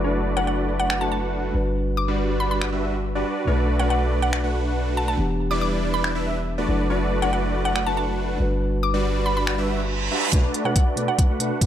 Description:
future bass; 140 BPM; 4/4; half-time; B minor; A4 = 440 Hz
mellow tine electric piano; accompaniment; 0.0-11.5 s; B2 to B4; -29 LUFS; left 1 dB; sidechain pumping, tape echo
supersaw chords; riff; 0.0-11.7 s; G3 to F#5; -26 LUFS; right 1 dB; sidechain pumping, low-pass filter, tape echo
long sustained 808-style bass; bass; 0.0-10.1 s; E1 to B1; -25 LUFS; equal; sidechain pumping
downlifter and reverse cymbal; sound effects; 0.0, 9.7-10.3 s; -26 LUFS; right 5 dB
mallet-like synth pluck; melody; 0.4-11.3 s; F#5 to D6; -28 LUFS; equal; chorus, sidechain pumping, tape echo
trap drum kit; drums; 0.9-11.7 s; finger snaps, hi-hat; -28 LUFS; equal; overdrive
electronic kick drum; drums; 10.3-11.7 s; -18 LUFS; equal; overdrive
light reverb; -20 LUFS; side -10 dB against mid
0.0-10.3 A section; 10.3-11.7 B section
filter sweep on supersaw synth 0.0-10.3; reverse cymbal 9.7-10.3; build-up 10.3-11.7
0.0 D6/F#; 1.5 Gmaj7; 3.5 Bm7; 5.2 Em7; 6.7 D6/F#; 8.4 Gmaj7; 10.3 Bm7

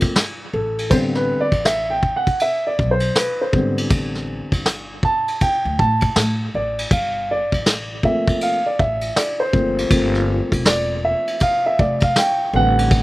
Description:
hip hop, jazz-hop; 80 BPM; 4/4; swing 63% on 16ths; G dorian; A4 = 441 Hz
dark baby grand piano; accompaniment; 0.0-13.0 s; D3 to A5; -19 LUFS; equal
upright bass; bass; 0.0-13.0 s; E1 to A2; -24 LUFS; equal
vintage brush drum kit; drums; 0.0-13.0 s; hi-hat, kick drum, ride cymbal, snare drum; -20 LUFS; equal
little or no reverb; recorded outdoors, with no room sound; -16 LUFS; side -18 dB against mid
0.0-13.0 A section
grand piano solo 0.0-13.0
0.0 Gm11; 0.5 Am11; 6.9 Gm11

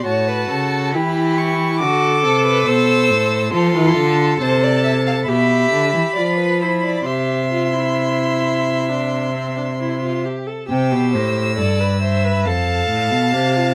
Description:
classical, baroque-style fugue for string quartet; 68 BPM; 4/4; straight; C major from 3.5 s; A4 = 440 Hz
rich violin; melody; 0.0-13.7 s; A5 to E6; -26 LUFS; equal
rich violin; second line; 0.0-13.7 s; F#4 to G5; -24 LUFS; equal
warm viola; accompaniment; 0.0-13.7 s; C4 to C5; -24 LUFS; equal
rich cello; bass; 0.0-13.7 s; F2 to F3; -22 LUFS; equal
little or no reverb; close, detailed microphones; -18 LUFS; mono
0.0-10.7 A section; 10.7-13.7 B section
0.1 A7; 1.8 D; 3.5 F; 5.3 G7/B; 7.1 C; 12.5 F

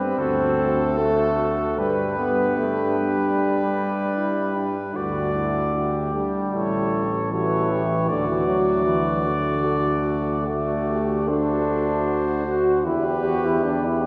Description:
classical, brass quintet; 76 BPM; 4/4; rubato; A4 = 441 Hz
warm trumpet; melody; 0.0-14.1 s; A4 to D5; -31 LUFS; equal
warm flugelhorn; second line; 0.0-14.1 s; F#4 to A4; -32 LUFS; equal
warm trombone; accompaniment; 0.0-14.1 s; D3 to G4; -27 LUFS; equal
clear tuba; bass; 0.0-14.1 s; A1 to G2; -30 LUFS; equal
clear French horn; accompaniment; 0.2-14.1 s; D4 to B4; -30 LUFS; equal
wet cathedral reverb, RT60 4.6 s; heard from further back in the room; -22 LUFS; mono
0.0-14.1 A section
0.2 D7; 1.8 G; 5.0 D; 6.5 A7; 8.1 D; 11.3 D7; 12.9 Em

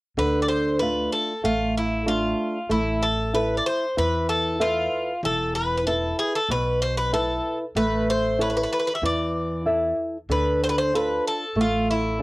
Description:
greek folk; 95 BPM; 4/4; straight; A4 = 440 Hz
Greek bouzouki; melody; 0.2-12.2 s; E4 to E5; -24 LUFS; left 1 dB; cassette tape
flamenco guitar; accompaniment; 0.2-12.2 s; B2 to E5; -24 LUFS; right 1 dB; cassette tape
upright bass; bass; 0.2-12.2 s; E1 to E2; -30 LUFS; equal
light reverb; home recording on cassette; -21 LUFS; side -21 dB against mid
0.2-12.2 A section
0.2 Dm; 2.7 Asus2; 5.2 E5; 7.8 A; 10.3 Dm

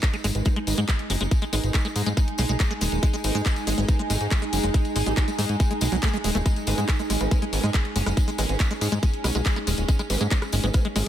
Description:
psychedelic trance; 140 BPM; 4/4; straight; G# minor; A4 = 440 Hz
pulsing gated texture; sustained chords; 0.0-11.1 s; G#3 to D#4; -32 LUFS; left 1 dB; chorus, built-in reverb, sidechain pumping
electronic kick drum; drums; 0.0-10.8 s; -22 LUFS; equal
garage drum kit; drums; 0.0-11.0 s; handclaps, hi-hat, rim click; -31 LUFS; left 2 dB
tambourine; percussion; 0.0-11.0 s; -36 LUFS; left 2 dB
warbly tape-like pad; texture; 0.0-11.1 s; D#4 to G#5; -32 LUFS; right 3 dB; chorus, built-in reverb, sidechain pumping
liquid acid bass; riff; 0.1-11.0 s; F#3 to A3; -31 LUFS; equal; chorus, auto-pan, sidechain pumping, dub echo
plucky analog bass; bass; 0.2-11.0 s; D#1 to G#2; -25 LUFS; equal
vowel-sweep wobble bass; second line; 0.3-11.1 s; F#3 to B3; -38 LUFS; right 3 dB; lush chorus, sidechain pumping, high-pass filter, ping-pong delay
little or no reverb; -21 LUFS; side -11 dB against mid
0.0-11.1 A section
0.0 G#5

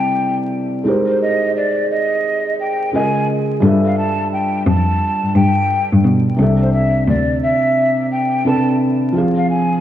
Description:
lo-fi hip hop; 87 BPM; 4/4; swing 64% on 16ths; C major; A4 = 440 Hz
breathy mellow jazz flute; melody; 0.0-9.8 s; C5 to A5; -19 LUFS; equal; low-pass filter
felt-muted upright piano; accompaniment; 0.0-9.8 s; C3 to F5; -18 LUFS; right 1 dB; low-pass filter
muted cello; bass; 3.6-7.4 s; C2 to B2; -15 LUFS; left 1 dB
moderate lush hall reverb, RT60 2.7 s; dreamy mix soaked in reverb, vinyl crackle, small room reverb; -14 LUFS; side -11 dB against mid
0.0-6.4 A section; 6.4-9.8 B section
break 0.0-3.6
0.0 C6; 0.9 Abmaj9; 2.9 Db6; 3.6 G13; 6.4 C69; 9.1 Fm

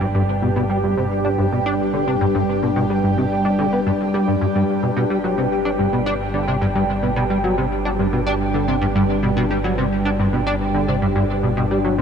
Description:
ambient; 109 BPM; 4/4; straight; G major; A4 = 440 Hz
phased analog pad; sustained chords; 0.0-12.0 s; G3 to G5; -21 LUFS; equal; phaser, chorus
plucky analog bass; riff; 0.0-12.0 s; G2 to D4; -20 LUFS; equal; ensemble chorus, ping-pong delay
analog drone; bass; 0.0-12.0 s; G1; -26 LUFS; equal; chorus
pulsing gated texture; texture; 0.0-12.0 s; G5; -30 LUFS; right 7 dB; chorus, built-in reverb
wet huge ambient reverb, RT60 7.5 s; dark, warm production; -17 LUFS; side -7 dB against mid
0.0-12.0 A section
0.0 G

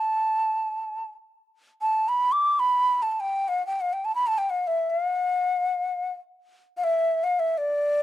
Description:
Arabic maqam ensemble; free time; D maqam rast; A4 = 440 Hz
breathy ney; solo; 0.0-8.0 s; D5 to D6; -22 LUFS; equal
small room ambience; dry, close 1970s-style studio recording; -22 LUFS; side -13 dB against mid
0.0-8.0 A section

